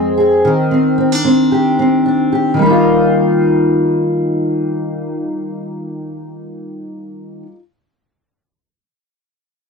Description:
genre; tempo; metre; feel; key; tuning
pop; 112 BPM; 4/4; straight; Eb major; A4 = 440 Hz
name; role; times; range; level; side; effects
fingerpicked steel-string acoustic guitar; accompaniment; 0.0-7.6 s; F2 to Ab4; -13 LUFS; left 1 dB; double-tracked left and right
room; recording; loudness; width
little or no reverb; dry, close 1970s-style studio recording; -12 LUFS; side -4 dB against mid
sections
0.0-2.6 A section; 2.6-6.9 B section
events
none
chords
0.4 Cmadd9/Eb; 2.6 Ebadd9

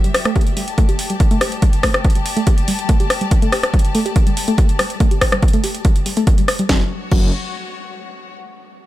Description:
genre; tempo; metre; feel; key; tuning
driving peak-time techno; 142 BPM; 4/4; straight; unclear; A4 = 442 Hz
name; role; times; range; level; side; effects
warbly dusty pluck; riff; 0.0-7.3 s; F#3 to G4; -22 LUFS; equal; chorus, tube saturation, sidechain pumping, ping-pong delay
techno drum kit; drums; 0.0-7.2 s; crash cymbal, hi-hat, rim click, snare drum; -21 LUFS; left 1 dB; sidechain pumping on hats, studio reverb, sidechain pumping on cymbals
bright symphonic string section; texture; 0.0-8.3 s; F#4 to A5; -29 LUFS; left 6 dB; sidechain pumping
electronic kick drum; drums; 0.4-7.2 s; none; -14 LUFS; equal; studio reverb
detuned saw bass; bass; 6.7-7.3 s; F#1; -21 LUFS; equal; sidechain pumping
room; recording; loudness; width
little or no reverb; none; -14 LUFS; side -15 dB against mid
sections
0.0-6.7 A section; 6.7-8.4 B section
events
fade-out on string section 0.0-6.7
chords
0.0 G5; 6.7 F#5

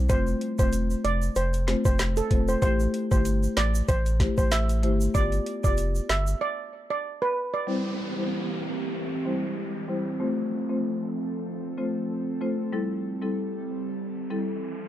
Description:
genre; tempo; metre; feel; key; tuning
dancehall; 95 BPM; 4/4; swing 56% on 16ths; A minor; A4 = 440 Hz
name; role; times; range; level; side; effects
warm sub bass; bass; 0.0-6.3 s; E1 to B1; -26 LUFS; equal; none
steel pan; melody; 0.1-7.6 s; A4 to E5; -29 LUFS; right 3 dB; tape echo
marimba with medium mallets; accompaniment; 0.1-14.5 s; G3 to D5; -29 LUFS; left 2 dB; low-pass filter
island pop drum kit; drums; 0.1-6.3 s; handclaps, hi-hat, kick drum, snare drum; -25 LUFS; equal; none
tube shaker; percussion; 0.1-6.4 s; none; -42 LUFS; right 6 dB; none
airy breathy pad; sustained chords; 7.7-14.9 s; E3 to A4; -32 LUFS; right 2 dB; chorus, sidechain pumping, low-pass filter
downlifter and riser; sound effects; 7.7-14.9 s; none; -38 LUFS; right 1 dB; none
room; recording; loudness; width
small room ambience; dark, warm production; -24 LUFS; side -12 dB against mid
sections
0.0-7.7 A section; 7.7-14.9 B section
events
break 6.4-7.7; filter sweep 7.7-14.9; riser 13.6-14.9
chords
0.1 F; 2.6 Am7; 5.1 G7; 7.7 C; 10.2 F; 12.7 Am7

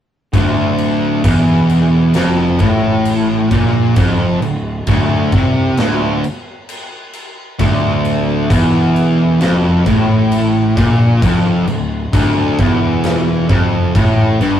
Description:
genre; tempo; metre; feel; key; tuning
stoner and doom metal; 66 BPM; 4/4; straight; D minor; A4 = 438 Hz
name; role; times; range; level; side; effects
fuzz guitar; riff; 0.3-14.6 s; D2 to C3; -13 LUFS; equal; distortion
fuzz picked electric bass; bass; 0.3-14.6 s; D1 to C2; -23 LUFS; equal; overdrive
big rock drum kit; drums; 0.3-14.6 s; crash cymbal, kick drum, snare drum; -18 LUFS; equal; none
room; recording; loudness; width
wet booth ambience, RT60 0.2 s; rough rehearsal-room recording; -11 LUFS; side -10 dB against mid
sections
0.3-14.6 A section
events
none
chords
0.3 Dm

